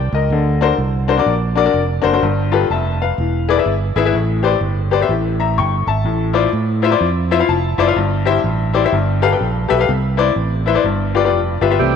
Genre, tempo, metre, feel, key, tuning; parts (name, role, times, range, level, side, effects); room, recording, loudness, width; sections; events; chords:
gospel; 125 BPM; 4/4; swing 62% on 8ths; A4 = 440 Hz
clear upright piano; accompaniment; 0.0-12.0 s; G2 to Db6; -16 LUFS; left 8 dB
fingered electric bass; bass; 0.0-12.0 s; E1 to A2; -18 LUFS; right 3 dB
overdriven tonewheel organ; sustained chords; 11.8-12.0 s; E3 to G4; -16 LUFS; right 11 dB; slow rotary speaker
moderate echo chamber reverb, RT60 2.3 s; 1960s-style stereo with parts hard left and right; -14 LUFS; side -7 dB against mid
0.0-12.0 A section
upright piano fill 7.3-8.0
0.3 D7alt; 2.2 G9; 3.2 E; 4.1 Am11; 5.1 Gm69; 6.1 Dm9/A; 8.0 C/G; 8.9 G9; 9.9 Cmaj9; 10.8 G7